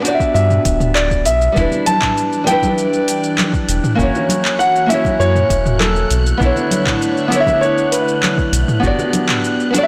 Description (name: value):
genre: sunset chillout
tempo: 99 BPM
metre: 4/4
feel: straight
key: E dorian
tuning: A4 = 438 Hz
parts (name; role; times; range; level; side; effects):
- nylon-string guitar; accompaniment; 0.0-9.9 s; G3 to D5; -21 LUFS; equal; tape echo
- airy breathy pad; sustained chords; 0.0-9.9 s; D3 to C#5; -27 LUFS; equal; chorus
- warm grand piano; melody; 0.1-9.9 s; A4 to A5; -20 LUFS; equal; delay
- deep house drum kit; drums; 0.1-9.9 s; handclaps, hi-hat, shaker, toms; -23 LUFS; equal; overdrive
- electronic kick drum; drums; 0.2-9.0 s; none; -23 LUFS; equal; overdrive
- round analog bass; bass; 0.3-8.9 s; D1 to G2; -19 LUFS; equal; none
- wind-like tuned noise texture; texture; 2.2-9.9 s; F#6; -30 LUFS; equal; built-in reverb
- congas; percussion; 1.7-9.9 s; none; -26 LUFS; equal; none
room: light reverb, digital ambience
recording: blown-out, overdriven recording, overdrive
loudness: -15 LUFS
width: mono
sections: 0.0-9.9 A section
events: none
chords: 0.0 Gmaj7; 1.6 Em7; 4.0 F#7; 6.1 Bm11; 8.8 Gmaj7